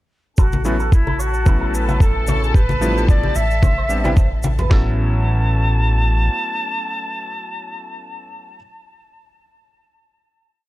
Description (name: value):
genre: nu-disco, nu disco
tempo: 111 BPM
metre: 4/4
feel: swing 54% on 16ths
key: A major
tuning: A4 = 444 Hz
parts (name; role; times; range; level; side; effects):
- silver concert flute; melody; 0.4-8.6 s; E4 to A5; -24 LUFS; equal; tape echo
- rich studio string section; sustained chords; 0.4-4.7 s; A4 to A5; -30 LUFS; left 4 dB; sidechain pumping, low-pass filter
- electric guitar with an envelope filter; riff; 0.4-5.0 s; G3 to G5; -30 LUFS; right 4 dB; analog chorus, low-pass filter
- fat analog bass; bass; 0.4-6.3 s; A1; -19 LUFS; equal; none
- dusty soul sampler-style drum kit; drums; 0.4-4.8 s; kick drum, snare drum; -14 LUFS; equal; none
- cabasa and congas; percussion; 0.4-4.7 s; none; -26 LUFS; left 2 dB; none
- warm electric grand piano; accompaniment; 0.6-8.6 s; F3 to G4; -26 LUFS; left 1 dB; sidechain pumping
room: small room ambience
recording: none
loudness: -15 LUFS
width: side -16 dB against mid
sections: 0.4-4.7 breakdown; 4.7-9.0 final chord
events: filter sweep on string section 0.4-4.7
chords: 0.4 A69; 2.5 G13/A; 3.4 Cmaj9/A; 4.7 A69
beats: | 0.39 0.93 1.47 2.01 | 2.55 3.09 3.63 4.17 | 4.71 5.25 5.79 6.33 | 6.87 7.41 7.95 8.49